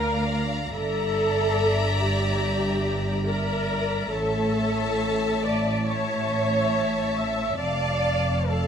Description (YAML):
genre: classical, slow romantic movement for symphony orchestra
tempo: 70 BPM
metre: 4/4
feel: rubato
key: unclear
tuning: A4 = 440 Hz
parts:
  - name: rich studio violin section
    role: melody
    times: 0.0-8.7 s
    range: A5 to Bb5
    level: -33 LUFS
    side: left 4 dB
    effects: none
  - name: warm studio violin section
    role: second line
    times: 0.0-8.7 s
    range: C#5 to F5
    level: -30 LUFS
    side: left 1 dB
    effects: none
  - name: dark studio viola section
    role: accompaniment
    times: 0.0-8.7 s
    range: G4 to E5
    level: -26 LUFS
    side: equal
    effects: none
  - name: rich studio cello section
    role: bass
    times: 0.0-8.7 s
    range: D2 to A2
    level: -28 LUFS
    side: equal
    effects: none
  - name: warm studio double bass section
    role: bass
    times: 0.0-8.7 s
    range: F1 to D2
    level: -30 LUFS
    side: right 2 dB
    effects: none
room: moderate scoring stage reverb, RT60 1.7 s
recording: close, detailed microphones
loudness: -22 LUFS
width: side -8 dB against mid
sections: 0.0-8.7 A section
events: none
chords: 0.0 Bb/D; 0.8 Em7b5/G; 4.1 A; 7.6 Dm/F